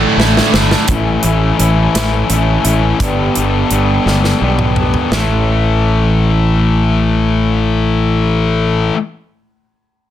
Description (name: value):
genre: quiet-loud alternative rock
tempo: 57 BPM (dotted quarters)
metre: 6/8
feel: straight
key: A mixolydian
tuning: A4 = 441 Hz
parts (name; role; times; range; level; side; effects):
- distorted electric guitar; riff; 0.0-0.9 s; A2 to A3; -17 LUFS; right 2 dB; overdrive
- thick fuzz guitar; riff; 0.0-9.0 s; G2 to E4; -16 LUFS; left 7 dB; distortion
- thick fuzz guitar; riff; 0.0-0.9 s; A2 to E4; -17 LUFS; right 16 dB; distortion
- modern bright fingered electric bass; bass; 0.0-8.9 s; G1 to B1; -15 LUFS; right 1 dB; none
- big rock drum kit; drums; 0.2-5.3 s; hi-hat, kick drum, snare drum, toms; -17 LUFS; right 1 dB; none
- electric guitar through a small old amp; arpeggios; 0.9-9.0 s; G2 to A4; -20 LUFS; right 2 dB; wide subtle chorus, plate reverb
room: light reverb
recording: dense, heavily limited modern master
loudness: -11 LUFS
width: side -11 dB against mid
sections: 0.9-5.1 A section; 5.1-9.3 B section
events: drum fill 0.0-0.9, 4.0-5.1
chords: 0.0 Asus4; 0.9 A; 3.0 G; 5.1 A